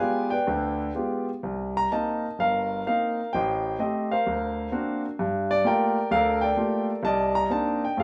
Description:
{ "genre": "solo jazz", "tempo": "128 BPM", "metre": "4/4", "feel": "swing 66% on 8ths, rubato", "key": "unclear", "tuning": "A4 = 440 Hz", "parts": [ { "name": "warm concert grand piano", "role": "solo", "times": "0.0-8.0 s", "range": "G1 to Bb5", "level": "-26 LUFS", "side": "equal", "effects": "none" } ], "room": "wet studio reverb, RT60 0.8 s", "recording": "band playing live in one room", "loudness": "-26 LUFS", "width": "mono", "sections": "0.0-8.0 A section", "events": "none", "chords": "0.0 G7b9; 1.4 Cm7; 3.3 Am7b5; 4.3 D7alt; 5.2 Gm9; 7.0 Cm9", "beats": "0.00 0.47 0.95 | 1.44 1.92 2.39 2.87 | 3.33 3.80 4.27 4.73 | 5.19 5.65 6.12 6.58 | 7.04 7.51 7.98" }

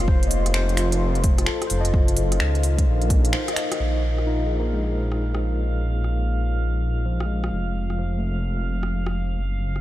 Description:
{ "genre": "future garage", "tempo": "129 BPM", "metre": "4/4", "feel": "swing 64% on 16ths", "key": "Bb minor", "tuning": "A4 = 440 Hz", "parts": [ { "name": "overdriven tine electric piano", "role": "accompaniment", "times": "0.0-9.4 s", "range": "F3 to Eb5", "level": "-30 LUFS", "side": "left 2 dB", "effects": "fast tremolo, sidechain pumping, analog delay" }, { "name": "deep dark ambient pad", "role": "sustained chords", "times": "0.0-9.8 s", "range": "Bb3 to C6", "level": "-31 LUFS", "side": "left 1 dB", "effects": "chorus, built-in reverb, sidechain pumping" }, { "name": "swelling detuned saw bass", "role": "bass", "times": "0.0-9.8 s", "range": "F1 to Db2", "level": "-23 LUFS", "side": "equal", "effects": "sidechain pumping" }, { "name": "electronic kick drum", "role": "drums", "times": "0.1-3.2 s", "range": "none", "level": "-20 LUFS", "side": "equal", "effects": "overdrive, studio reverb" }, { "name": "organic electronic drum kit", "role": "drums", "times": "0.2-9.8 s", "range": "finger snaps, hi-hat, rim click", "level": "-29 LUFS", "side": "equal", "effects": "studio reverb" }, { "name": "drifting glass-harmonics texture", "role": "texture", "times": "4.7-9.8 s", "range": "F5", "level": "-35 LUFS", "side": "right 3 dB", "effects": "chorus, built-in reverb" } ], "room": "digital ambience", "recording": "none", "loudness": "-20 LUFS", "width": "side -14 dB against mid", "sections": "0.0-3.8 A section; 3.8-9.8 B section", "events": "break 3.3-3.8; band accent 3.3", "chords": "0.1 F7; 1.9 Ebm7/Gb; 3.8 Bbm7; 7.5 F", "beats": "| 0.08 0.54 1.01 1.47 | 1.94 2.40 2.87 3.33 | 3.80 4.26 4.73 5.20 | 5.66 6.13 6.59 7.06 | 7.52 7.99 8.45 8.92 | 9.38" }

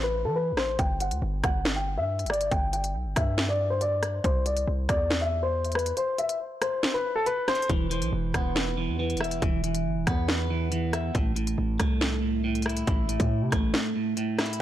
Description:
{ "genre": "hip hop, drill", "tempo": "139 BPM", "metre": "4/4", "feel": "half-time", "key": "unclear", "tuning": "A4 = 440 Hz", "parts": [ { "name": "clear upright piano", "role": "melody", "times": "0.0-7.7 s", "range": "A4 to G5", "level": "-28 LUFS", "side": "left 2 dB", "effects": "low-pass filter, tape echo" }, { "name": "hard-hitting 808-style bass", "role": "bass", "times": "0.0-13.7 s", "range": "E1 to E3", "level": "-29 LUFS", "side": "equal", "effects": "none" }, { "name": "drill drum kit", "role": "drums", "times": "0.6-14.6 s", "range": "hi-hat, kick drum, rim click, snare drum", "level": "-28 LUFS", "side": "equal", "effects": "none" }, { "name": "clean electric guitar", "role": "accompaniment", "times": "7.7-14.6 s", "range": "A2 to E5", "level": "-28 LUFS", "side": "right 2 dB", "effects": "phaser, low-pass filter" } ], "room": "digital ambience", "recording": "blown-out, overdriven recording, overdrive", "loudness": "-24 LUFS", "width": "side -12 dB against mid", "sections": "0.0-14.6 A section", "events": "break 0.0-0.8, 13.7-14.6; filter sweep 0.0-7.7; kick muted 6.0-7.7", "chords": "0.0 Am; 0.8 G5; 4.2 C; 7.7 E5; 11.1 Am", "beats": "0.36 | 0.79 1.22 1.65 2.08 | 2.52 2.95 3.38 3.81 | 4.24 4.67 5.11 5.54 | 5.97 6.40 6.83 7.26 | 7.70 8.13 8.56 8.99 | 9.42 9.85 10.29 10.72 | 11.15 11.58 12.01 12.44 | 12.88 13.31 13.74 14.17 | 14.60" }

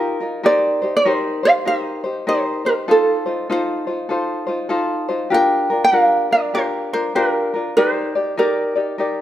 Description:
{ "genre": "Hawaiian", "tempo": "98 BPM", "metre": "4/4", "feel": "swing 63% on 8ths", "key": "unclear", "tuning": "A4 = 440 Hz", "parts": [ { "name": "tenor ukulele", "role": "accompaniment", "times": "0.0-9.2 s", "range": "D4 to D5", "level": "-20 LUFS", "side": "left 2 dB", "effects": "none" }, { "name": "ukulele", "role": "melody", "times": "0.5-9.2 s", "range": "A4 to G5", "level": "-17 LUFS", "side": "right 2 dB", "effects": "none" } ], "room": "moderate recital hall reverb, RT60 1.6 s", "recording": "none", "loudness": "-16 LUFS", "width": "side -12 dB against mid", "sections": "0.0-9.2 A section", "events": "none", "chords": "0.4 Cm7/Eb; 2.9 F7; 5.3 Gm7; 7.8 Ebmaj7", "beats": "| 0.45 1.05 1.66 2.27 | 2.88 3.49 4.10 4.71 | 5.32 5.93 6.54 7.15 | 7.76 8.37 8.98" }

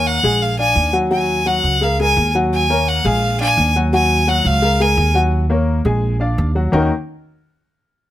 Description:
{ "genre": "jazz", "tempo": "171 BPM", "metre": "4/4", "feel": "straight", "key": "Eb minor", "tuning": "A4 = 439 Hz", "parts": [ { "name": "bright violin", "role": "melody", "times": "0.0-5.2 s", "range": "F5 to Ab5", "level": "-17 LUFS", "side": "equal", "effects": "none" }, { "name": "clear upright piano", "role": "accompaniment", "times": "0.0-6.9 s", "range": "Eb3 to Ab5", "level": "-19 LUFS", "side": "left 2 dB", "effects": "none" }, { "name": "upright bass", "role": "bass", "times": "0.0-6.9 s", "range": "Bb1 to Eb2", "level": "-18 LUFS", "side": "right 1 dB", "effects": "none" } ], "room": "little or no reverb", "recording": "close, detailed microphones", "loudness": "-14 LUFS", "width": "side -13 dB against mid", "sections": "0.0-6.7 A section; 6.7-8.1 B section", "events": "violin solo 0.0-6.7", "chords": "0.4 Bb7; 1.1 Ebm7; 1.8 Dbsus2; 2.5 Ebm7; 3.2 Bb7; 3.9 Ebm7; 4.6 Dbsus2; 5.3 Ebm7; 6.0 Bb7; 6.7 Ebm7", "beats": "0.06 0.41 0.76 | 1.11 1.46 1.81 2.17 | 2.52 2.87 3.22 3.57 | 3.92 4.27 4.62 4.98 | 5.33 5.68 6.03 6.38 | 6.73" }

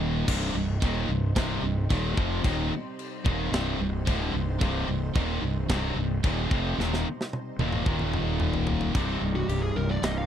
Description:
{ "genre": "heavy metal", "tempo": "111 BPM", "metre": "4/4", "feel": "straight", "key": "C minor", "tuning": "A4 = 439 Hz", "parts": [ { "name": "lush unison pad", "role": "sustained chords", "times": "0.0-8.9 s", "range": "Bb2 to C5", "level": "-40 LUFS", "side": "equal", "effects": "chorus, phaser" }, { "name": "crunchy overdriven guitar", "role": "riff", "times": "0.0-10.3 s", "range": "C2 to Eb4", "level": "-33 LUFS", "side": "equal", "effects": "none" }, { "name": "high-gain distorted guitar", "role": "riff", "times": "0.0-10.3 s", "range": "C2 to F3", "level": "-33 LUFS", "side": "left 10 dB", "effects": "distortion" }, { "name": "scooped high-gain guitar", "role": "riff", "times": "0.0-10.3 s", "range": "C2 to F3", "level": "-32 LUFS", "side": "right 8 dB", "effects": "distortion" }, { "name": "fuzz fingered electric bass", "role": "bass", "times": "0.0-10.2 s", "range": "C1 to F1", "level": "-30 LUFS", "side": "equal", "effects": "overdrive" }, { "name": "tight metal drum kit", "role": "drums", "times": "0.3-10.2 s", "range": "china cymbal, crash cymbal, kick drum, snare drum, toms", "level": "-30 LUFS", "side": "equal", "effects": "none" }, { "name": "high-gain lead guitar", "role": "melody", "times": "9.4-10.3 s", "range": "F#4 to F5", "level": "-32 LUFS", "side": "left 1 dB", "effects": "distortion" } ], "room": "little or no reverb", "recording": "dry, close 1970s-style studio recording", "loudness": "-25 LUFS", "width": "side -10 dB against mid", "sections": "0.0-9.0 A section; 9.0-10.3 B section", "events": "drum fill 6.8-9.0; lead electric guitar solo 9.0-10.3", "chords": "0.3 Cm; 7.9 Eb5; 9.0 Cm", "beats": "| 0.29 0.83 1.37 1.91 | 2.45 2.99 3.53 4.08 | 4.62 5.16 5.70 6.24 | 6.78 7.33 7.87 8.41 | 8.95 9.49 10.04" }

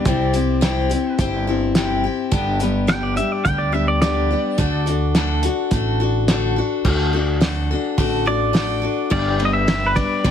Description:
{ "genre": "honky-tonk and classic country", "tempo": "106 BPM", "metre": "4/4", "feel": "straight", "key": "G major", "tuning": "A4 = 439 Hz", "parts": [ { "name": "twangy electric guitar", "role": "melody", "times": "0.0-10.3 s", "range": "B4 to G5", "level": "-23 LUFS", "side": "equal", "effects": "lush chorus, tape echo" }, { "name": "picked steel-string acoustic guitar", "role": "accompaniment", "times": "0.0-10.3 s", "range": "G2 to B4", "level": "-21 LUFS", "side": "left 4 dB", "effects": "none" }, { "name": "upright bass", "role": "bass", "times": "0.1-10.3 s", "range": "G1 to D2", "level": "-22 LUFS", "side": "right 1 dB", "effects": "none" }, { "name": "cloth-damped thuddy drum kit", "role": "drums", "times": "0.1-10.3 s", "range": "crash cymbal, hi-hat, kick drum, ride cymbal, snare drum", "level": "-21 LUFS", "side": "right 1 dB", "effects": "none" } ], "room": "little or no reverb", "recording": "heavily compressed radio sound, multiband compression", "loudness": "-17 LUFS", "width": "side -9 dB against mid", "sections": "0.0-6.8 A section; 6.8-9.1 B section; 9.1-10.3 C section", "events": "clean electric guitar solo 0.0-6.8", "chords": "0.1 C; 2.3 G; 4.6 D; 9.1 G", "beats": "| 0.06 0.62 1.19 1.76 | 2.32 2.89 3.45 4.02 | 4.58 5.15 5.72 6.28 | 6.85 7.42 7.98 8.55 | 9.11 9.68 10.24" }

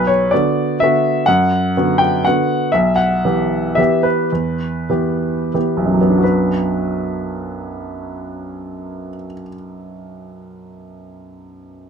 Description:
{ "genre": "classical, piano waltz", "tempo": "80-133 BPM", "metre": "3/4", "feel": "rubato", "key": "B minor", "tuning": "A4 = 439 Hz", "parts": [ { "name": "clear baby grand piano", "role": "solo", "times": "0.0-11.9 s", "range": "B1 to G5", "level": "-16 LUFS", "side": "equal", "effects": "none" } ], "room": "light reverb", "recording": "close, detailed microphones", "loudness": "-14 LUFS", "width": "side -6 dB against mid", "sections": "0.0-6.3 A section; 6.3-10.1 B section", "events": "slowing down 2.0-6.3", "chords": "0.0 Bm; 2.7 Em/B; 6.3 Bm", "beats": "0.32 0.81 | 1.28 1.75 2.25 | 2.74 3.24 3.79 | 4.33 4.91 5.55 | 6.26 6.90 7.55 | 8.19 8.82 9.47" }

